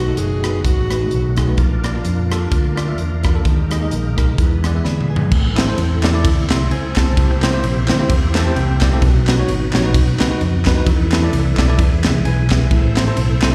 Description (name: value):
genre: uptempo gospel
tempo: 130 BPM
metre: 4/4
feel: swing 56% on 8ths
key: unclear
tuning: A4 = 440 Hz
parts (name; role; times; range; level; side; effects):
- breathy tenor saxophone; melody; 0.0-1.3 s; F#4 to G#4; -25 LUFS; equal; slapback echo
- barky tine electric piano; accompaniment; 0.0-13.5 s; A2 to C6; -25 LUFS; equal; slapback echo
- bright tonewheel organ; sustained chords; 0.0-13.5 s; D#3 to E5; -29 LUFS; equal; slow rotary speaker, overdrive, chorus vibrato
- mellow French horn section; sustained chords; 0.0-5.3 s; D3 to G#4; -36 LUFS; equal; none
- fingered electric bass; bass; 0.0-13.5 s; F#1 to E#2; -20 LUFS; equal; none
- crisp fusion drum kit; drums; 0.2-13.5 s; crash cymbal, hi-hat, kick drum, ride cymbal, rim click, snare drum, toms; -20 LUFS; equal; none
- group handclap; percussion; 5.6-13.5 s; none; -31 LUFS; equal; none
room: little or no reverb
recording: live gig heard through the venue's PA, recital hall reverb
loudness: -16 LUFS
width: mono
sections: 0.0-5.3 A section; 5.3-13.5 B section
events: drum fill 4.8-5.3; tine electric piano fill 8.1-9.0, 12.0-12.7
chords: 0.0 B7; 1.6 A#; 3.5 D#sus4; 4.4 E7; 5.3 Am; 7.2 C7; 9.0 B; 10.9 Esus4; 11.8 E; 12.7 Am